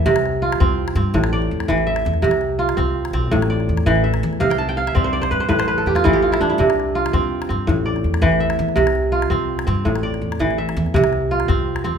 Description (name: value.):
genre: west african traditional, West African string and xylophone music.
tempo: 110 BPM (dotted quarters).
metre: 12/8.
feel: straight.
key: C major.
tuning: A4 = 440 Hz.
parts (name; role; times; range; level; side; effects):
kora; arpeggios; 0.0-12.0 s; A2 to A5; -18 LUFS; right 1 dB; none.
upright bass; bass; 0.0-12.0 s; A1 to G2; -22 LUFS; equal; none.
calabash; percussion; 0.1-11.9 s; none; -25 LUFS; left 3 dB; none.
room: moderate recital hall reverb, RT60 1.3 s.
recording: minimal, uncompressed stereo recording.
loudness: -16 LUFS.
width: side -7 dB against mid.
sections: 0.0-12.0 A section.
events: kora fill 4.4-6.6.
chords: 0.1 C; 1.1 Am; 2.2 C; 3.3 Am; 4.4 C; 5.5 A5; 6.6 C5; 7.7 Am; 8.8 C; 9.9 Am; 10.9 C.